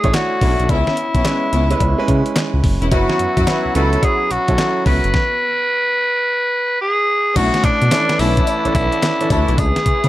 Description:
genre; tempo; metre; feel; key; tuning
R&B, new jack swing; 108 BPM; 4/4; swing 64% on 16ths; B dorian; A4 = 437 Hz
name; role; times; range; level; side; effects
raspy tenor saxophone; melody; 0.0-10.1 s; D4 to B4; -18 LUFS; equal; none
bright grand piano; accompaniment; 0.0-9.6 s; E3 to E5; -22 LUFS; right 3 dB; none
smooth synth bass; bass; 0.0-10.1 s; E1 to C#3; -18 LUFS; equal; none
clean 12-bit digital drum machine; drums; 0.0-10.1 s; crash cymbal, handclaps, hi-hat, kick drum, snare drum, tambourine; -19 LUFS; equal; none
cowbell; percussion; 0.1-9.7 s; none; -32 LUFS; left 9 dB; none
clear studio string section; stabs; 0.4-10.1 s; A3 to F#4; -24 LUFS; left 3 dB; none
warm analog pad; sustained chords; 3.2-10.1 s; B4 to E6; -29 LUFS; equal; chorus
room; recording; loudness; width
studio reverb; none; -14 LUFS; side -15 dB against mid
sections
0.0-7.4 A section; 7.4-10.1 B section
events
none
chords
0.0 Bm11; 0.7 C#m7; 2.9 F#7sus4; 5.1 N.C.; 7.4 Bm11; 9.6 C#m7

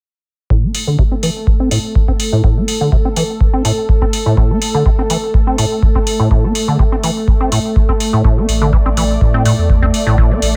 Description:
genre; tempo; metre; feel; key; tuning
acid house; 124 BPM; 4/4; straight; A minor; A4 = 441 Hz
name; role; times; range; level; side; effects
warm analog pad; sustained chords; 0.7-10.6 s; A3 to D5; -23 LUFS; equal; chorus, sidechain pumping
acid bass, square; riff; 0.5-10.4 s; A2 to C4; -19 LUFS; equal; tube saturation, analog chorus, sidechain pumping, delay
electronic kick drum; drums; 0.5-10.3 s; none; -16 LUFS; equal; none
electronic hi-hat; drums; 0.7-10.5 s; none; -24 LUFS; equal; none
saturated sub bass; bass; 8.5-10.6 s; A1 to A2; -18 LUFS; equal; sidechain pumping
room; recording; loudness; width
light reverb; none; -14 LUFS; mono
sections
0.5-10.6 A section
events
filter sweep on acid bass 0.5-10.6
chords
0.5 Am

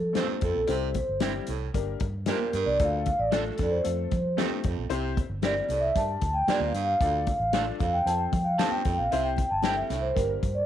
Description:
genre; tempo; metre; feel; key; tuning
uptempo 1960s-style soul; 114 BPM; 4/4; straight; F major; A4 = 440 Hz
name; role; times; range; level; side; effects
vibraphone with soft mallets; melody; 0.0-10.7 s; A4 to A5; -27 LUFS; equal; slapback echo
vintage muted fingered electric bass; bass; 0.0-10.7 s; G1 to F3; -32 LUFS; right 1 dB; none
clear upright piano; accompaniment; 0.1-10.4 s; G3 to D5; -35 LUFS; left 12 dB; none
natural country drum kit; drums; 0.1-10.6 s; hi-hat, kick drum, snare drum; -31 LUFS; left 2 dB; none
congas; percussion; 0.1-10.3 s; none; -40 LUFS; right 12 dB; none
growling baritone saxophone; riff; 0.2-10.1 s; D2 to C3; -36 LUFS; right 13 dB; none
electric guitar at the edge of break-up; stabs; 0.2-9.7 s; G3 to A4; -37 LUFS; right 12 dB; slapback echo
room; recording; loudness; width
studio reverb; 1960s-style stereo with parts hard left and right; -24 LUFS; side -10 dB against mid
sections
0.0-10.7 A section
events
vibraphone solo 0.0-10.7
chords
0.0 F; 0.7 C; 1.7 Gm; 2.8 Dm; 3.9 F; 4.9 C; 6.0 Gm; 7.0 Dm; 8.1 F; 9.1 C

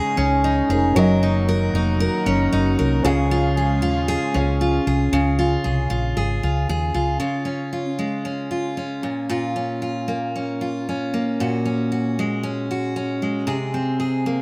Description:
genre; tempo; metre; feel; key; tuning
pop; 115 BPM; 4/4; swing 55% on 16ths; Db major; A4 = 441 Hz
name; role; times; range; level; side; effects
dark upright piano; accompaniment; 0.0-5.2 s; Db4 to F5; -31 LUFS; equal; none
picked steel-string acoustic guitar; accompaniment; 0.0-14.4 s; Bb2 to Bb4; -23 LUFS; equal; none
airy breathy pad; sustained chords; 0.0-5.1 s; Db3 to Gb4; -32 LUFS; equal; chorus
hollow-body short-scale fingered electric bass; bass; 0.2-7.2 s; F1 to Eb2; -24 LUFS; equal; none
room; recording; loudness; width
light reverb; none; -21 LUFS; mono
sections
0.0-5.1 A section; 5.1-7.2 B section; 7.2-14.4 C section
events
none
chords
0.0 Dbsus2; 1.0 Gb6; 3.0 Db; 9.0 Bbm; 11.4 Gbadd9/Bb; 13.5 Abadd9/C

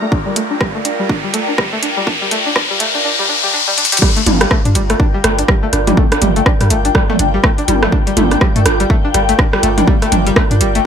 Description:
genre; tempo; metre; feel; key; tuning
minimal techno; 123 BPM; 4/4; swing 60% on 16ths; G minor; A4 = 440 Hz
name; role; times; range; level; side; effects
string-like resonator pluck; riff; 0.0-10.8 s; G3 to D4; -19 LUFS; equal; chorus, cassette tape, sidechain pumping, ping-pong delay
riser; sound effects; 0.0-4.0 s; none; -17 LUFS; left 3 dB; none
airy breathy pad; texture; 0.0-10.9 s; F4 to G5; -21 LUFS; left 2 dB; chorus, phaser, sidechain pumping
bubbling stepped-filter texture; texture; 0.0-3.0 s; Bb4 to Bb5; -31 LUFS; left 1 dB; chorus, built-in reverb, sidechain pumping
electronic kick drum; drums; 0.1-10.5 s; none; -14 LUFS; equal; none
booming analog drum machine; drums; 0.4-10.8 s; crash cymbal, hi-hat, rim click; -18 LUFS; equal; overdrive, high-pass filter on hats, high-pass filter on snare, high-pass filter on cymbals
minimal click drum kit; percussion; 4.0-10.5 s; rim click, toms; -17 LUFS; right 2 dB; none
punchy sub bass; bass; 4.3-10.8 s; G1 to G2; -16 LUFS; equal; sidechain pumping
room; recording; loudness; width
light reverb; high-pass filter; -11 LUFS; side -8 dB against mid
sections
0.0-4.0 A section; 4.0-10.9 B section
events
build-up 0.0-4.0; riser 0.0-4.0; filter sweep on synth pluck 0.0-4.0; filter sweep 0.0-4.0; drum fill 3.8; drop 4.0-10.9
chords
0.0 Gm7

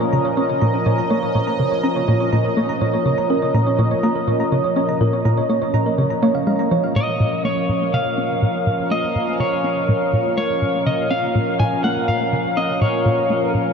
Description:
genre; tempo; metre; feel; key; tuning
ambient, sequencer-driven space music; 123 BPM; 4/4; straight; Bb minor; A4 = 440 Hz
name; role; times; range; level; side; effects
sweeping resonant pad; sustained chords; 0.0-13.7 s; Bb2 to F5; -21 LUFS; equal; chorus
thumb-piano-like synth pluck; arpeggios; 0.0-6.9 s; Bb4 to Bb5; -25 LUFS; moving between left 2 dB and right 5 dB; chorus, auto-pan, analog delay
tight sequencer bass; riff; 0.0-13.7 s; Bb2 to Db4; -21 LUFS; equal; wide subtle chorus, analog delay
lightly driven lead guitar; melody; 7.0-13.5 s; Db5 to Ab5; -22 LUFS; left 1 dB; analog delay
room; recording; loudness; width
wet huge ambient reverb, RT60 7.8 s; dark, warm production; -16 LUFS; side -6 dB against mid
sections
0.0-7.0 A section; 7.0-13.7 B section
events
filter sweep on analog synth bass 0.0-7.0, 7.0-13.7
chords
0.0 Bbm

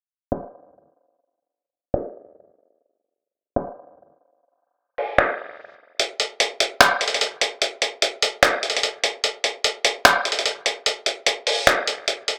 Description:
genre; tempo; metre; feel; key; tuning
hip hop; 148 BPM; 4/4; half-time; none; none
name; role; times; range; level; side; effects
lo-fi sampler-style drum kit; drums; 0.3-12.4 s; finger snaps, hi-hat; -19 LUFS; equal; none
room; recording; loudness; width
moderate spring reverb, RT60 1.6 s; low-pass filter; -21 LUFS; mono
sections
0.0-6.0 A section; 6.0-12.4 B section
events
filter sweep 0.0-6.0; kick muted 6.0-12.4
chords
none

